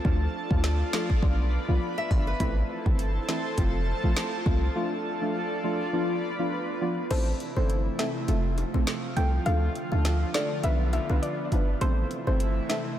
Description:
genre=dancehall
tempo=102 BPM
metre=4/4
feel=swing 56% on 16ths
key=A minor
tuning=A4 = 439 Hz
part: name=deep mellow chord stab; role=accompaniment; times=0.0-12.9 s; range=E3 to B4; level=-32 LUFS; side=equal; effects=chorus
part: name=airy breathy pad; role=sustained chords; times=0.0-13.0 s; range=C3 to B5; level=-32 LUFS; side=equal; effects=chorus
part: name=hard-hitting 808-style bass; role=bass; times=0.0-12.6 s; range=F1 to D2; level=-25 LUFS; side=equal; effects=none
part: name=afro-pop drum kit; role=drums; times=0.0-12.8 s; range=crash cymbal, hi-hat, kick drum, snare drum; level=-31 LUFS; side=equal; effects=none
part: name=nylon-string guitar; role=arpeggios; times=2.0-2.6 s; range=B4 to E5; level=-37 LUFS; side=left 1 dB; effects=diffuse ambient delay
part: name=soft round pluck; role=melody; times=7.1-13.0 s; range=C5 to G5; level=-34 LUFS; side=equal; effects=chorus, diffuse ambient delay
part: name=bongos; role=percussion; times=7.1-12.8 s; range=none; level=-41 LUFS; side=left 5 dB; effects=none
part: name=soft round pluck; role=second line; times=10.6-11.7 s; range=D5 to E5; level=-36 LUFS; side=left 2 dB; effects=chorus, diffuse ambient delay
room=moderate cathedral reverb, RT60 6.2 s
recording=dreamy mix soaked in reverb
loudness=-24 LUFS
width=side -12 dB against mid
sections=0.0-7.1 A section; 7.1-13.0 B section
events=break 4.8-7.1; kick muted 7.1-13.0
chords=0.0 Dm; 1.2 Bdim; 2.4 Am; 3.6 F; 4.8 Dm; 5.9 Bdim; 7.1 Am; 8.3 F; 9.5 Dm; 10.6 Bdim; 11.8 Am

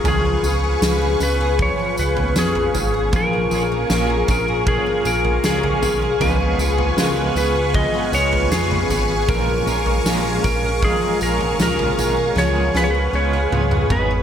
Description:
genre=dream pop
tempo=78 BPM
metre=4/4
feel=straight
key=unclear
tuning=A4 = 443 Hz
part: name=clean lap steel guitar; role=melody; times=0.0-14.2 s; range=G#4 to D#5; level=-22 LUFS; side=equal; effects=tape echo
part: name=lush unison pad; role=sustained chords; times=0.0-14.2 s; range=A#4 to D#6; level=-25 LUFS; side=right 1 dB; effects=chorus, phaser
part: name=picked twelve-string acoustic guitar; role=arpeggios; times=0.0-14.2 s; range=E#3 to G#4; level=-24 LUFS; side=left 5 dB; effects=analog chorus, tape echo
part: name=chorused synth bass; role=bass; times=0.0-14.2 s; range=G#1 to E#2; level=-23 LUFS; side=equal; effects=none
part: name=huge arena drum kit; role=drums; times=0.1-14.1 s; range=kick drum, snare drum, tambourine, toms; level=-23 LUFS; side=right 1 dB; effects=tape echo
part: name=electric guitar at the edge of break-up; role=accompaniment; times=3.1-14.2 s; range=A#2 to A#4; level=-26 LUFS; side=right 3 dB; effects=tremolo, lush chorus, tape echo
room=light reverb, small room ambience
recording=echo-heavy mix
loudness=-16 LUFS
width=side -9 dB against mid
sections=0.0-14.2 A section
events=drum fill 12.4-14.2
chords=0.1 C#7; 3.1 A#m7; 6.2 C#7; 9.3 A#m7; 12.4 C#7

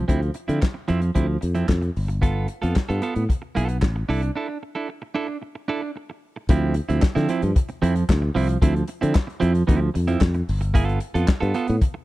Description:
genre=disco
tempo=113 BPM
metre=4/4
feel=straight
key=D dorian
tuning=A4 = 440 Hz
part: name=clean electric guitar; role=accompaniment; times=0.0-12.0 s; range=F3 to A4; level=-25 LUFS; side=right 4 dB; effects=none
part: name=modern bright fingered electric bass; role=bass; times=0.0-11.8 s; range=G1 to D3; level=-22 LUFS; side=left 1 dB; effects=none
part: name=warm soul drum kit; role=drums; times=0.1-11.9 s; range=handclaps, hi-hat, kick drum, snare drum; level=-20 LUFS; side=left 1 dB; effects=none
room=studio reverb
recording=none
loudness=-20 LUFS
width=side -17 dB against mid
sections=0.0-6.5 A section; 6.5-12.0 B section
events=break 4.4-6.5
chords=0.0 Dm9; 2.0 G9; 4.1 C69 (rootless); 6.5 Dm9; 10.5 G9

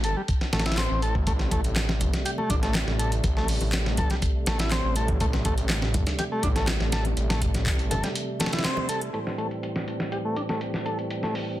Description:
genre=breakbeat, breaks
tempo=122 BPM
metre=4/4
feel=straight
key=A minor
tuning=A4 = 440 Hz
part: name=combo organ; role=riff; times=0.0-11.3 s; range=G3 to A4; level=-31 LUFS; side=equal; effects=overdrive, vintage 12-bit sampler grit, low-pass filter, digital delay
part: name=detuned saw bass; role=bass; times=0.0-8.0 s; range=G1 to A1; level=-27 LUFS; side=equal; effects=none
part: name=dusty soul sampler-style drum kit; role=drums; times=0.0-11.5 s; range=hi-hat, kick drum, snare drum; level=-27 LUFS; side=equal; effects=low-pass filter on snare, low-pass filter on kick, low-pass filter on hats, low-pass filter on room
part: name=house drum kit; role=drums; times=0.8-9.1 s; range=handclaps, hi-hat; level=-35 LUFS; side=equal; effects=overdrive, low-pass filter on snare, low-pass filter on hats, low-pass filter on room
part: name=tonewheel organ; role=sustained chords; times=1.3-11.6 s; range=A2 to C4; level=-33 LUFS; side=right 1 dB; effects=overdrive, fast rotary speaker, vintage 12-bit sampler grit, sidechain pumping, low-pass filter
part: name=congas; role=percussion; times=1.4-8.9 s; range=none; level=-35 LUFS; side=left 2 dB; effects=none
room=light reverb, digital ambience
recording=dense, heavily limited modern master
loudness=-23 LUFS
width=side -14 dB against mid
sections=0.0-9.1 A section; 9.1-11.6 B section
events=band accent 8.6; filter sweep on tonewheel organ 9.1-11.6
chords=0.0 Am7

